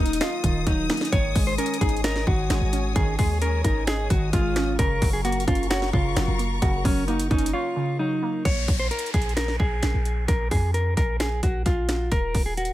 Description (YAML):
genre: hip hop, trap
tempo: 131 BPM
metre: 4/4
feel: half-time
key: Bb minor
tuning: A4 = 442 Hz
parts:
  - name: mellow electric guitar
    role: melody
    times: 0.0-12.7 s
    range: Db4 to Db5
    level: -27 LUFS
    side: equal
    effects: low-pass filter, tape echo
  - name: warbly dusty pluck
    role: accompaniment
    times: 0.0-8.5 s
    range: Db3 to Eb5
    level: -29 LUFS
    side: equal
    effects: chorus, low-pass filter
  - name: warm symphonic string section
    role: sustained chords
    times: 0.0-8.4 s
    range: Bb4 to Eb6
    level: -34 LUFS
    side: left 4 dB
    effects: none
  - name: clean 808-style bass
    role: bass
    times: 0.0-12.7 s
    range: Eb1 to F2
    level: -26 LUFS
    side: equal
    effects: none
  - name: trap drum kit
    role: drums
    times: 0.1-12.7 s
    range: finger snaps, hi-hat, kick drum, snare drum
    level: -25 LUFS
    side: equal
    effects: tape echo
  - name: downlifter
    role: sound effects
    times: 8.5-12.1 s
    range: none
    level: -35 LUFS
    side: left 2 dB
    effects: none
room: little or no reverb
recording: echo-heavy mix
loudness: -21 LUFS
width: side -14 dB against mid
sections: 0.0-8.5 A section; 8.5-12.7 B section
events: break 7.5-8.5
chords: 0.0 Ebm; 1.1 Absus4; 4.8 Gb; 8.5 Bb5; 12.1 Ebm